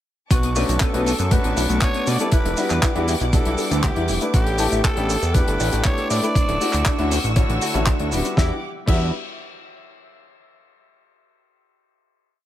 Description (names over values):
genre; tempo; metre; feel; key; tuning
nu-disco, nu disco; 119 BPM; 4/4; straight; E dorian; A4 = 440 Hz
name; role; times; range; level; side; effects
growling tenor saxophone; melody; 0.3-9.1 s; F#4 to E5; -28 LUFS; right 1 dB; dub echo
rich symphonic violin section; sustained chords; 0.3-8.6 s; G3 to E6; -31 LUFS; equal; sidechain pumping
mellow electric guitar; riff; 0.3-9.1 s; A3 to A5; -29 LUFS; left 2 dB; ensemble chorus
fat analog bass; bass; 0.3-9.1 s; D1 to B2; -23 LUFS; equal; none
damped 70s drum kit; drums; 0.3-9.0 s; crash cymbal, handclaps, hi-hat, snare drum; -27 LUFS; left 2 dB; none
electronic kick drum; drums; 0.3-9.0 s; none; -19 LUFS; equal; none
maracas; percussion; 0.3-8.3 s; none; -32 LUFS; right 6 dB; none
clear grand piano; accompaniment; 0.6-9.1 s; D3 to F#5; -25 LUFS; left 2 dB; sidechain pumping, ping-pong delay
room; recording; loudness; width
studio reverb; none; -18 LUFS; side -12 dB against mid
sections
0.3-8.4 drop; 8.4-10.4 final chord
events
drop 0.3-8.4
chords
0.3 Bm9; 2.3 Em9; 4.3 A7sus4; 6.4 Dmaj9; 8.4 Em9